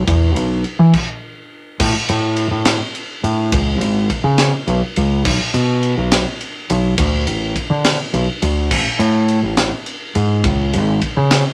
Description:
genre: math rock and midwest emo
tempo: 69 BPM (dotted quarters)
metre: 6/8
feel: straight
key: unclear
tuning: A4 = 440 Hz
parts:
  - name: growling fingered electric bass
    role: bass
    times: 0.0-11.4 s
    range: G#1 to E3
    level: -18 LUFS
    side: equal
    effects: overdrive
  - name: crisp fusion drum kit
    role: drums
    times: 0.1-11.4 s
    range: crash cymbal, kick drum, ride cymbal, snare drum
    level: -22 LUFS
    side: equal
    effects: none
room: moderate studio reverb, RT60 0.6 s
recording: none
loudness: -17 LUFS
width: mono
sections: 0.0-1.8 A section; 1.8-11.5 B section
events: stop 0.9-1.8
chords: none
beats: | 0.07 0.94 | 1.80 2.67 | 3.53 4.40 | 5.26 6.12 | 6.99 7.85 | 8.72 9.58 | 10.44 11.31

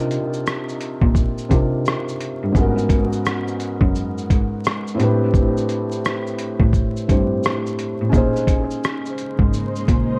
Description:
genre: lo-fi hip hop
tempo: 86 BPM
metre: 4/4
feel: swing 62% on 16ths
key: unclear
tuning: A4 = 440 Hz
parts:
  - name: felt-muted upright piano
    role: accompaniment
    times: 0.0-10.2 s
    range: Ab2 to C5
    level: -25 LUFS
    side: equal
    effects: low-pass filter, analog delay
  - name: rich cello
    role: bass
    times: 0.0-10.2 s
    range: Gb2 to C3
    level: -25 LUFS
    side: equal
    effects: none
  - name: lo-fi sampler-style drum kit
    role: drums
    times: 0.1-10.1 s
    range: hi-hat, kick drum, rim click, shaker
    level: -22 LUFS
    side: equal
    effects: none
  - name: granular cloud pad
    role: sustained chords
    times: 8.8-10.2 s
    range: Db3 to C5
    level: -30 LUFS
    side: equal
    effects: built-in reverb, low-pass filter
room: light reverb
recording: echo-heavy mix, vinyl crackle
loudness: -20 LUFS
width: mono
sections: 0.0-10.2 A section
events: none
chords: 0.0 Cm11; 2.5 Abm11; 5.0 Am11; 8.1 Bbm11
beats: 0.46 1.15 1.85 | 2.55 3.25 3.94 4.64 | 5.34 6.04 6.74 7.43 | 8.13 8.83 9.53

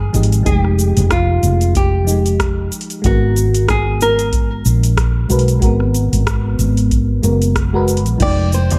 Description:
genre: sunset chillout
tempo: 93 BPM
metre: 4/4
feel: swing 57% on 16ths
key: unclear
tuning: A4 = 441 Hz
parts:
  - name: flamenco guitar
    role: melody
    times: 0.0-8.8 s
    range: F4 to D5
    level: -22 LUFS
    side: equal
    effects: digital delay
  - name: mellow FM electric piano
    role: accompaniment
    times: 0.0-8.8 s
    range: F3 to G5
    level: -23 LUFS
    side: equal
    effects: chorus, phaser, digital delay
  - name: woody fretless electric bass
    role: bass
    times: 0.0-8.8 s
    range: F1 to Cb2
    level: -17 LUFS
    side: equal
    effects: none
  - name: deep house drum kit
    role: drums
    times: 0.1-8.8 s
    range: cabasa, crash cymbal, hi-hat, rim click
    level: -26 LUFS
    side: equal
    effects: studio reverb
  - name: electronic kick drum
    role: drums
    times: 0.5-8.4 s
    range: none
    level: -21 LUFS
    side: equal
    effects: studio reverb
  - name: congas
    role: percussion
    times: 8.7-8.8 s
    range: none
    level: -22 LUFS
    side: equal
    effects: none
room: light reverb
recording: dark, warm production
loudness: -15 LUFS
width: mono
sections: 0.0-8.8 A section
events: none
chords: 0.0 Fm9; 3.0 Abm9; 8.2 Fm9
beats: | 0.46 1.11 1.75 2.40 | 3.04 3.69 4.33 4.98 | 5.62 6.27 6.92 7.56 | 8.21

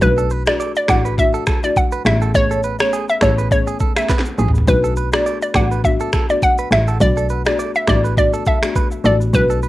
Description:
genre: afrobeats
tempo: 103 BPM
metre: 4/4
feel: swing 55% on 16ths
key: B dorian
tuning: A4 = 439 Hz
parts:
  - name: hollow square pluck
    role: melody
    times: 0.0-9.6 s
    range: B4 to F#5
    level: -18 LUFS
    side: equal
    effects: chorus, cassette tape
  - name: buzzing marimba with medium mallets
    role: accompaniment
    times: 0.0-9.7 s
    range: A3 to G#4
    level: -24 LUFS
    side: left 7 dB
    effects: cassette tape
  - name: warm double bass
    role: bass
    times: 0.0-9.7 s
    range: A1 to B1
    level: -18 LUFS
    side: equal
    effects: none
  - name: afro-pop drum kit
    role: drums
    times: 0.0-9.7 s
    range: finger snaps, kick drum, rim click, shaker, snare drum, toms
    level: -19 LUFS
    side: equal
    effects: cassette tape
  - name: direct-recorded clean electric guitar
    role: riff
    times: 0.2-9.7 s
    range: G#4 to D5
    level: -26 LUFS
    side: right 7 dB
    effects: cassette tape, analog delay
room: light reverb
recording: home recording on cassette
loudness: -14 LUFS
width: side -16 dB against mid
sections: 0.0-9.7 A section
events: drum fill 4.1-4.7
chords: 0.0 E9sus4; 2.1 Amaj9; 4.7 Bm7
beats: | 0.02 0.60 1.18 1.76 | 2.35 2.93 3.51 4.09 | 4.68 5.26 5.84 6.42 | 7.01 7.59 8.17 8.75 | 9.34

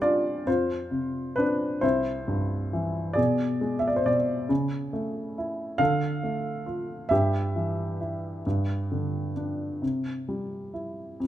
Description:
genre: classical, lyrical solo piano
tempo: 44 BPM (dotted quarters)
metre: 6/8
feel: rubato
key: C major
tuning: A4 = 444 Hz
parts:
  - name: dark baby grand piano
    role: solo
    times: 0.0-11.3 s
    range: C2 to F5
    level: -25 LUFS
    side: equal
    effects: none
room: light reverb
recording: close, detailed microphones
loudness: -25 LUFS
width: side -12 dB against mid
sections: 0.0-11.3 A section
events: none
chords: 0.5 F5; 1.8 C; 3.2 Bm6; 4.5 A/C#; 5.8 Dm; 7.1 Em/G; 8.5 G5; 9.8 C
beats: 0.47 | 1.84 3.18 | 4.50 5.80 | 7.11 8.45 | 9.82 11.20

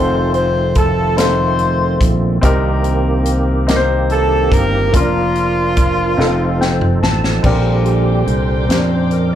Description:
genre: slow gospel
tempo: 48 BPM (dotted quarters)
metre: 6/8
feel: straight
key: Bb major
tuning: A4 = 439 Hz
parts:
  - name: breathy tenor saxophone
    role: melody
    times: 0.0-7.0 s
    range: F4 to C5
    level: -19 LUFS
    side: right 2 dB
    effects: slapback echo
  - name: warm cor anglais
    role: melody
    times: 0.0-7.0 s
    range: F4 to C5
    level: -23 LUFS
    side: left 7 dB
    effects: slapback echo, tape echo
  - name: warm grand piano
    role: accompaniment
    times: 0.0-9.3 s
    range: Bb2 to A5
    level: -20 LUFS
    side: left 3 dB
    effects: slapback echo
  - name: tonewheel organ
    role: sustained chords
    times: 0.0-9.3 s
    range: D3 to A5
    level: -20 LUFS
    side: right 2 dB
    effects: fast rotary speaker, chorus vibrato
  - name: fingered electric bass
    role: bass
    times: 0.0-9.3 s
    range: F1 to F2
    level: -17 LUFS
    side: equal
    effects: none
  - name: natural country drum kit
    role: drums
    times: 0.3-9.3 s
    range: crash cymbal, hi-hat, kick drum, snare drum, toms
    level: -17 LUFS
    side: equal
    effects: none
  - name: warm studio string section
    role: sustained chords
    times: 7.4-9.3 s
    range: G5 to D6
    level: -31 LUFS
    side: left 1 dB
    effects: none
room: light reverb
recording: live gig heard through the venue's PA, club reverb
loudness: -12 LUFS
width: side -10 dB against mid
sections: 0.0-7.4 A section; 7.4-9.3 B section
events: drum fill 6.2-7.4; grand piano fill 6.2-7.4; tonewheel organ fill 6.2-7.4; tonewheel organ solo 7.4-9.3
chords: 0.0 F7; 2.4 Cm7; 4.9 Bb/F; 6.2 F7; 7.4 Bb69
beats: 1.18 | 2.43 3.68 | 4.93 6.19 | 7.44 8.70

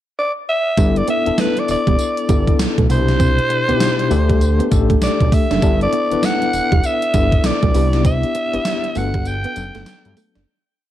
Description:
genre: R&B, new jack swing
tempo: 99 BPM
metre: 4/4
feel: swing 62% on 16ths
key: G major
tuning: A4 = 440 Hz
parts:
  - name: breathy alto saxophone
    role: melody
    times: 0.2-10.2 s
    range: B4 to G5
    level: -20 LUFS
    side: right 1 dB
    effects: none
  - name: tine electric piano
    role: accompaniment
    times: 0.8-10.5 s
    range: B2 to B4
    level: -21 LUFS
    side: left 6 dB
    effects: medium tremolo
  - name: direct-recorded clean electric guitar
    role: riff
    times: 0.8-10.4 s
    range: G3 to D4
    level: -25 LUFS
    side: right 6 dB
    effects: ensemble chorus
  - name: fat analog bass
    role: bass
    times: 0.8-10.5 s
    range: E1 to G2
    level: -18 LUFS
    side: right 1 dB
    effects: none
  - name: gated 80s digital drum machine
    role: drums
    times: 0.8-10.5 s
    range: hi-hat, kick drum, snare drum, tambourine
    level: -18 LUFS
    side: right 1 dB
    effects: gated reverb, gated reverb snare, overdrive
room: light reverb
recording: dark, warm production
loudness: -14 LUFS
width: side -12 dB against mid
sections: 0.0-0.8 pickup bar; 0.8-10.5 chorus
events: fade-out 8.0-10.5; break 9.3-10.5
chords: 0.0 N.C.; 0.8 G6; 2.9 Cmaj7; 4.1 Dsus4; 5.6 G6; 7.7 Cmaj7; 9.0 Gmaj7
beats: 0.17 | 0.78 1.38 1.99 2.59 | 3.20 3.81 4.41 5.02 | 5.62 6.23 6.84 7.44 | 8.05 8.65 9.26 9.87

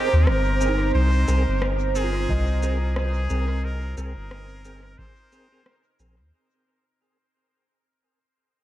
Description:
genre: ambient dub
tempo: 89 BPM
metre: 4/4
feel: swing 58% on 16ths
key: unclear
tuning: A4 = 440 Hz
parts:
  - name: trumpet with straight mute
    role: melody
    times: 0.0-6.0 s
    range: G4 to C5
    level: -31 LUFS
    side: equal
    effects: dub echo
  - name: deep dark ambient pad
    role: sustained chords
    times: 0.0-6.3 s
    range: C4 to Bb5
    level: -28 LUFS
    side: right 2 dB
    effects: chorus, built-in reverb
  - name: soft synth bell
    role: arpeggios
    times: 0.0-6.4 s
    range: Eb4 to Eb5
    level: -33 LUFS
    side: right 1 dB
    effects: chorus, vintage 12-bit sampler grit, dub echo
  - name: percussive tonewheel organ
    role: stabs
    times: 0.0-6.2 s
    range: C4 to Bb4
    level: -34 LUFS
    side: equal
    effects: overdrive, chorus vibrato, stopped rotary speaker, dub echo
  - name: soft dub sub bass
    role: bass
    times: 0.1-6.3 s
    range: G1 to Eb2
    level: -22 LUFS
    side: equal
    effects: none
  - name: electronic rim click and shaker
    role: drums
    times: 0.3-6.2 s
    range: none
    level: -34 LUFS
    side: left 1 dB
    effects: overdrive, studio reverb, dub echo
  - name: electronic kick drum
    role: drums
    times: 2.3-5.1 s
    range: none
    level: -32 LUFS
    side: equal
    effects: studio reverb
room: light reverb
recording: vinyl crackle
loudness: -20 LUFS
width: side -13 dB against mid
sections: 0.0-6.3 A section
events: fade-out 0.0-6.3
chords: 0.0 Abadd9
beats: 0.27 | 0.94 1.62 2.29 2.96 | 3.64 4.31 4.99 5.66

